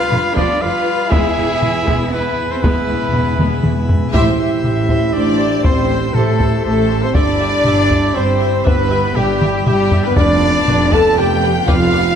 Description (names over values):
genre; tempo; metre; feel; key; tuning
cinematic, epic orchestral film score; 119 BPM; 3/4; straight; A minor; A4 = 440 Hz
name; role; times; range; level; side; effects
warm symphonic violin section; melody; 0.0-12.2 s; E4 to A5; -26 LUFS; left 4 dB; none
rich symphonic violin section; second line; 0.0-12.2 s; E4 to A5; -26 LUFS; left 2 dB; none
pipe organ, plenum; sustained chords; 0.0-12.2 s; G3 to B5; -24 LUFS; equal; none
clear trumpet; stabs; 0.0-12.2 s; G4 to A5; -21 LUFS; right 1 dB; none
rich chamber cello section; bass; 0.0-12.1 s; F2 to F4; -22 LUFS; right 3 dB; none
warm symphonic viola section; accompaniment; 0.1-12.0 s; D3 to E5; -27 LUFS; right 1 dB; none
rich symphonic double bass section; bass; 0.1-12.1 s; E1 to A1; -22 LUFS; right 3 dB; none
solo taiko drums; drums; 0.1-12.1 s; none; -18 LUFS; left 1 dB; none
dark French horn section; sustained chords; 1.1-12.2 s; G3 to A4; -18 LUFS; left 2 dB; none
timpani; percussion; 1.1-4.1 s; E2; -24 LUFS; left 2 dB; none
small flute group; second line; 4.1-12.2 s; G4 to A5; -25 LUFS; equal; none
room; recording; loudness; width
moderate scoring stage reverb, RT60 1.9 s; none; -12 LUFS; side -8 dB against mid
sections
0.0-4.1 A section; 4.1-12.2 B section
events
timpani fill 1.1-4.1; drum fill 3.4-4.1, 9.4-10.2; band accent 4.1-4.6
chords
0.0 Bdim/F; 1.1 E; 4.1 Am7; 7.2 Em/G; 10.2 Bdim/F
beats
0.12 0.62 | 1.12 1.62 2.13 | 2.63 3.13 3.63 | 4.14 4.64 5.14 | 5.64 6.15 6.65 | 7.15 7.65 8.16 | 8.66 9.16 9.66 | 10.17 10.67 11.17 | 11.67